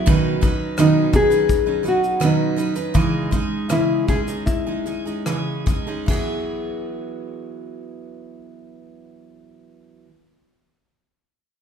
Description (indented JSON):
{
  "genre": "acoustic pop",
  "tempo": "72-85 BPM",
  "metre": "4/4",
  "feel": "straight",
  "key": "E major",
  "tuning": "A4 = 440 Hz",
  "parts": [
    { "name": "picked steel-string acoustic guitar", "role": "accompaniment", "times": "0.0-10.1 s", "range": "B2 to B4", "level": "-22 LUFS", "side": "right 3 dB", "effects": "none" },
    { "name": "soft brush drum kit", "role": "drums", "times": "0.1-6.3 s", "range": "crash cymbal, kick drum, rim click, shaker", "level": "-22 LUFS", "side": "left 2 dB", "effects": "none" },
    { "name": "nylon-string guitar", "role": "melody", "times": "0.8-10.1 s", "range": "D#4 to G#4", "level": "-20 LUFS", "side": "left 2 dB", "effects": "none" }
  ],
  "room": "moderate recital hall reverb, RT60 1.5 s",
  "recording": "recorded in a church or concert hall",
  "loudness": "-18 LUFS",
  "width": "side -7 dB against mid",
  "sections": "0.1-6.1 A section; 6.1-9.4 B section",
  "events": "slowing down 0.1-6.1",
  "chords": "0.1 Badd9; 2.9 C#madd9; 6.1 Eadd9",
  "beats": "| 0.07 0.78 1.49 2.21 | 2.95 3.70 4.47 5.26 | 6.08 6.91 7.75 8.58"
}